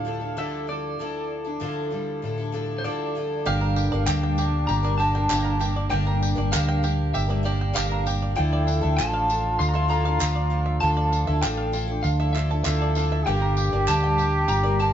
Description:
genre	indie folk with a building arrangement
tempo	98 BPM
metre	4/4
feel	straight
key	unclear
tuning	A4 = 443 Hz
part	electric guitar through a small old amp	melody	0.0-14.9 s	C5 to C6	-28 LUFS	equal	tremolo
part	fingerpicked steel-string acoustic guitar	accompaniment	0.0-5.9 s	D2 to A4	-32 LUFS	left 1 dB	none
part	picked twelve-string acoustic guitar	accompaniment	0.0-14.9 s	G2 to Bb4	-30 LUFS	left 3 dB	none
part	warm trombone	second line	3.5-14.9 s	D4 to A4	-30 LUFS	right 2 dB	none
part	mellow tonewheel organ	sustained chords	3.5-14.9 s	Bb2 to G4	-36 LUFS	right 2 dB	slow rotary speaker
part	bluegrass banjo	arpeggios	3.5-14.9 s	D4 to A5	-33 LUFS	right 5 dB	none
part	hollow-body short-scale fingered electric bass	bass	3.5-14.9 s	G1 to D2	-23 LUFS	equal	none
part	tambourine	percussion	3.8-14.9 s	none	-36 LUFS	left 5 dB	none
part	group handclap	percussion	4.1-14.0 s	none	-31 LUFS	right 6 dB	none
room	light reverb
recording	band playing live in one room, nothing above 7.8 kHz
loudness	-21 LUFS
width	side -10 dB against mid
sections	0.0-3.5 A section; 3.5-14.9 B section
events	none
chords	0.0 Dmadd9; 3.5 Gm; 8.4 Dmadd9; 13.3 Gm

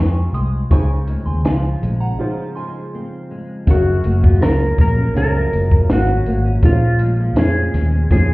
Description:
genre	indie pop, bedroom pop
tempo	81 BPM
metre	4/4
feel	straight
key	unclear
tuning	A4 = 439 Hz
part	soft synth bell	second line	0.0-2.7 s	F5 to Eb6	-31 LUFS	right 2 dB	analog chorus, slapback echo
part	dark upright piano	accompaniment	0.0-8.3 s	C4 to F5	-27 LUFS	right 2 dB	cassette tape
part	flamenco guitar	accompaniment	0.0-8.3 s	Gb2 to Db4	-24 LUFS	left 1 dB	wide subtle chorus, vibrato effect
part	vintage muted fingered electric bass	bass	0.0-8.3 s	Gb1 to F2	-17 LUFS	equal	none
part	compact cocktail drum kit	drums	0.3-8.3 s	hi-hat, kick drum, snare drum	-15 LUFS	equal	none
part	clean lap steel guitar	melody	3.7-8.3 s	F4 to Bb4	-21 LUFS	equal	analog chorus, slapback echo
room	light reverb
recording	heard muffled through a wall, stone room reverb, EQ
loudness	-14 LUFS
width	side -21 dB against mid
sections	0.0-3.7 A section; 3.7-8.3 B section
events	break 2.2-3.7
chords	0.0 Dbmaj7; 3.7 Gbmaj7; 6.6 Bbm7

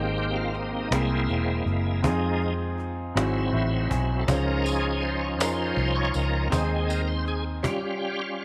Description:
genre	slow gospel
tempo	54 BPM (dotted quarters)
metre	6/8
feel	straight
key	Ab major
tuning	A4 = 440 Hz
part	warm grand piano	accompaniment	0.0-7.7 s	Ab2 to Ab5	-33 LUFS	equal	none
part	bright tonewheel organ	sustained chords	0.0-8.4 s	F3 to Db5	-31 LUFS	equal	slow rotary speaker, chorus vibrato
part	vintage muted fingered electric bass	bass	0.0-7.6 s	E1 to F2	-30 LUFS	equal	none
part	cajon	drums	0.2-7.8 s	none	-31 LUFS	equal	none
part	tambourine	percussion	4.3-7.2 s	none	-42 LUFS	equal	none
room	moderate echo chamber reverb, RT60 2.5 s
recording	none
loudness	-26 LUFS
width	mono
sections	0.0-8.4 A section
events	tonewheel organ solo 0.0-8.4; grand piano fill 3.2-4.3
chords	0.0 Abmaj7; 0.9 Caug7; 2.0 Fm7; 3.2 Ab7alt; 4.3 Dbmaj7; 6.5 Ab/Eb; 7.6 Fsus2/G

